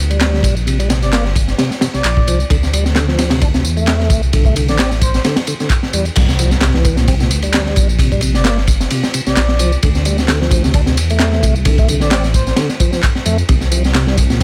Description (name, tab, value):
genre	breakbeat, breaks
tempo	131 BPM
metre	4/4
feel	swing 55% on 16ths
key	unclear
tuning	A4 = 439 Hz
part	dark detuned saw bass	bass	0.0-14.4 s	G1 to F2	-18 LUFS	equal	tube saturation
part	tonewheel organ	riff	0.1-14.4 s	Bb2 to D4	-23 LUFS	equal	overdrive, fast rotary speaker, tube saturation, vintage 12-bit sampler grit, delay
part	crunchy breakbeat drum kit	drums	0.1-14.4 s	crash cymbal, kick drum, ride cymbal, snare drum	-18 LUFS	equal	none
part	electronic tambourine and handclaps	drums	0.1-14.4 s	none	-25 LUFS	equal	none
part	breathy flute-like synth lead	melody	1.0-5.2, 8.3-12.5 s	C5 to D5	-28 LUFS	equal	chorus, small speaker sound, delay
part	impact	sound effects	6.2-8.0 s	none	-28 LUFS	equal	none
room	little or no reverb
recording	none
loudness	-14 LUFS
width	mono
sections	0.0-6.2 A section; 6.2-14.4 B section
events	drop 6.2-14.4; impact 6.2-8.0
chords	0.0 Csus2; 2.5 Dsus2; 6.2 Csus2; 9.8 Dmadd9; 13.5 C5